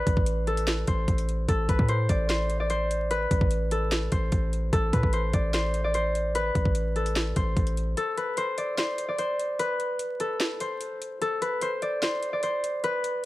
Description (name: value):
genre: hip hop, trap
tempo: 148 BPM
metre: 4/4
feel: half-time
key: A minor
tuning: A4 = 442 Hz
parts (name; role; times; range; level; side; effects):
- concert harp; melody; 0.0-13.3 s; A4 to D5; -28 LUFS; left 1 dB; low-pass filter
- hard-hitting 808-style bass; bass; 0.0-8.0 s; A1 to A2; -27 LUFS; equal; none
- trap drum kit; drums; 0.1-13.1 s; hi-hat, kick drum, snare drum; -27 LUFS; equal; vintage 12-bit sampler grit
room: light reverb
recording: vinyl crackle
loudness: -24 LUFS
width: side -17 dB against mid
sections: 0.0-13.3 A section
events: break 8.0-13.3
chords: 0.0 Amadd9; 8.0 N.C.